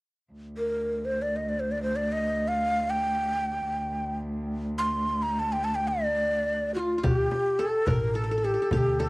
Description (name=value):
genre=Arabic maqam ensemble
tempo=free time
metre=none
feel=none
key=D maqam kurd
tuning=A4 = 441 Hz
part: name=muted cello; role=drone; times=0.3-7.1 s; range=D2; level=-32 LUFS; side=equal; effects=cassette tape
part: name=breathy ney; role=melody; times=0.6-9.1 s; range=F4 to C6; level=-27 LUFS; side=equal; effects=none
part: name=qanun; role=second line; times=6.8-9.1 s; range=F4 to Bb4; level=-30 LUFS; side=equal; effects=cassette tape
part: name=upright bass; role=bass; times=7.0-9.1 s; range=A1 to D2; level=-30 LUFS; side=equal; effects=transformer saturation
part: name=darbuka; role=percussion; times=7.0-9.1 s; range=none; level=-29 LUFS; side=left 1 dB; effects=none
part: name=frame drum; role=percussion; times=7.0-9.1 s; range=none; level=-32 LUFS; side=equal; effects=none
room=moderate small room reverb, RT60 0.5 s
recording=home recording on cassette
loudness=-25 LUFS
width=side -23 dB against mid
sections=0.3-7.0 A section; 7.0-9.1 B section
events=none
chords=none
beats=free time